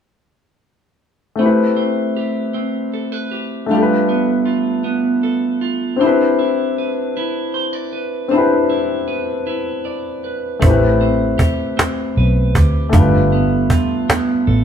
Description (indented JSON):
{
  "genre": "slow six-eight R&B",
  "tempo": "52 BPM (dotted quarters)",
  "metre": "6/8",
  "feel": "straight",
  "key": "A minor",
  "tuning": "A4 = 440 Hz",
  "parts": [
    { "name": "clean electric guitar", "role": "second line", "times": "1.4-14.6 s", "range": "G3 to D5", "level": "-20 LUFS", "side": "right 4 dB", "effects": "none" },
    { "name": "warm grand piano", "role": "accompaniment", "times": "1.4-14.6 s", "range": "A3 to B4", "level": "-18 LUFS", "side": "left 4 dB", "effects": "none" },
    { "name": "vintage muted fingered electric bass", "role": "bass", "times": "10.6-14.6 s", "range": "G1 to D2", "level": "-15 LUFS", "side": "right 1 dB", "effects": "none" },
    { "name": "cajon", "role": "drums", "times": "10.6-14.3 s", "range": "none", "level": "-17 LUFS", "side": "right 1 dB", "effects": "none" }
  ],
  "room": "wet large studio reverb, RT60 1.4 s",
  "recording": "band playing live in one room",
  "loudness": "-15 LUFS",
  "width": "side -8 dB against mid",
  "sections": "1.4-14.6 A section",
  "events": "none",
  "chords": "1.4 Am9; 3.7 G9; 6.0 Cmaj9; 10.6 Am9; 12.9 G9",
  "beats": "| 1.39 2.54 | 3.70 4.85 | 6.01 7.16 | 8.31 9.47 | 10.62 11.78 | 12.93 14.08"
}